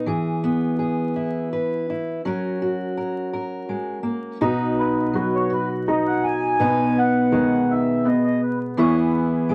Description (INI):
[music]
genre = acoustic folk duo or small band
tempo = 82 BPM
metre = 3/4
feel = straight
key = B major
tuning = A4 = 440 Hz
[part]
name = fingerpicked steel-string acoustic guitar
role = accompaniment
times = 0.0-9.5 s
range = B2 to B4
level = -24 LUFS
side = equal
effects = none
[part]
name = felt-muted upright piano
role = arpeggios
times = 4.4-9.5 s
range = D#3 to G#4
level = -26 LUFS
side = equal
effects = none
[part]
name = mellow accordion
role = second line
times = 4.8-9.3 s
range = B4 to G#5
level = -27 LUFS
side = equal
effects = none
[sound]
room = moderate small room ambience, RT60 0.5 s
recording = vinyl crackle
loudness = -22 LUFS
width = mono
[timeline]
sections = 0.0-4.4 A section; 4.4-9.5 B section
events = accordion solo 4.4-9.5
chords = 0.1 E; 2.2 F#; 4.4 B; 6.6 G#m/B; 8.8 E